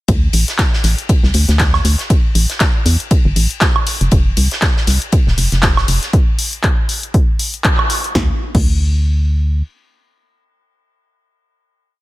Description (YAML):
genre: deep house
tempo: 119 BPM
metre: 4/4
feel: swing 57% on 16ths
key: D minor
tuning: A4 = 441 Hz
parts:
  - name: organ-like FM bass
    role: bass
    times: 0.1-9.6 s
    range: Eb1 to E2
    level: -14 LUFS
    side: equal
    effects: tube saturation
  - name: big rock drum kit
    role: drums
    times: 0.1-6.1 s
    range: ride cymbal, snare drum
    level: -25 LUFS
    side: left 1 dB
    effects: sidechain pumping on cymbals, high-pass filter on cymbals, high-pass filter on snare, high-pass filter on room
  - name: electronic kick drum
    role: drums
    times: 0.1-8.7 s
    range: none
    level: -14 LUFS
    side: equal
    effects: none
  - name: punchy analog drum machine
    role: drums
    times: 0.1-8.7 s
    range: crash cymbal, handclaps, hi-hat, snare drum, woodblock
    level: -18 LUFS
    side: equal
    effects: none
room: small room ambience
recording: none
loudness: -12 LUFS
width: side -18 dB against mid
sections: 0.1-8.2 drop; 8.2-12.0 final note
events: drop 0.1-8.2; band accent 7.6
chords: none